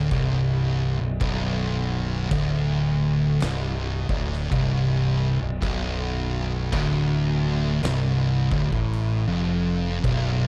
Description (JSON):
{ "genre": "stoner and doom metal", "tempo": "54 BPM", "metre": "4/4", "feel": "swing 62% on 8ths", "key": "unclear", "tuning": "A4 = 440 Hz", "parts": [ { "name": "thick fuzz guitar", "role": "riff", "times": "0.0-10.5 s", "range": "B1 to A2", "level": "-27 LUFS", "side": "equal", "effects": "distortion" }, { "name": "thick fuzz guitar", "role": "riff", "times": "0.0-10.5 s", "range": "B1 to A2", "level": "-30 LUFS", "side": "equal", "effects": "distortion" }, { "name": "growling fingered electric bass", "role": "bass", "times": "0.0-10.5 s", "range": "B0 to A1", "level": "-31 LUFS", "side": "equal", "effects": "overdrive" }, { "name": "oversized low-tuned drum kit", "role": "drums", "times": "0.1-10.4 s", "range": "crash cymbal, kick drum, snare drum", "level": "-34 LUFS", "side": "equal", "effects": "none" } ], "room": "little or no reverb", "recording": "none", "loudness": "-24 LUFS", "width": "mono", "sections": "0.0-10.5 A section", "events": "none", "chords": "0.0 Bm" }